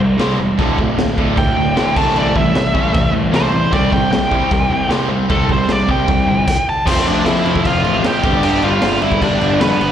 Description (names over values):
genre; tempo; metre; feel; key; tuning
punk rock; 153 BPM; 4/4; straight; unclear; A4 = 440 Hz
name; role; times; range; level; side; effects
crunchy overdriven guitar; riff; 0.0-9.8 s; D2 to G4; -21 LUFS; left 9 dB; none
overdriven electric guitar; riff; 0.0-9.8 s; D2 to C4; -22 LUFS; right 9 dB; slapback echo
fuzz picked electric bass; bass; 0.0-9.9 s; D1 to F2; -21 LUFS; equal; overdrive
raw garage drum kit; drums; 0.2-9.9 s; crash cymbal, kick drum, snare drum; -19 LUFS; equal; none
distorted electric guitar; riff; 0.6-9.9 s; D2 to C4; -22 LUFS; right 1 dB; distortion, slapback echo
high-gain lead guitar; melody; 1.4-9.9 s; B3 to A5; -18 LUFS; right 1 dB; distortion, slapback echo
room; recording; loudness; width
small room ambience; live gig heard through the venue's PA, recital hall reverb; -13 LUFS; side -9 dB against mid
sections
0.0-6.9 A section; 6.9-9.9 B section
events
lead electric guitar solo 0.0-6.9; stop 6.5-6.9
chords
0.0 C; 0.6 D5; 2.0 Am/C; 3.7 C5; 6.9 F; 8.2 G